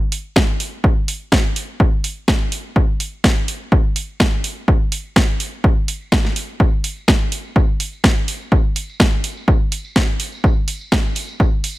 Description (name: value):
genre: house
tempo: 125 BPM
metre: 4/4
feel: straight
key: none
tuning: none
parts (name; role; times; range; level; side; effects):
- house drum kit; drums; 0.1-11.7 s; hi-hat, snare drum; -20 LUFS; equal; sidechain pumping on hats
- tambourine; percussion; 0.1-11.8 s; none; -40 LUFS; right 3 dB; sidechain pumping on perc, low-pass filter on perc
- electronic kick drum; drums; 0.4-11.5 s; none; -15 LUFS; equal; none
room: little or no reverb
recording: none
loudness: -16 LUFS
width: side -18 dB against mid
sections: 0.0-11.8 A section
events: none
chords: none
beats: 0.36 0.84 1.32 | 1.80 2.28 2.76 3.24 | 3.72 4.20 4.68 5.16 | 5.64 6.12 6.60 7.08 | 7.56 8.04 8.52 9.00 | 9.48 9.96 10.44 10.92 | 11.40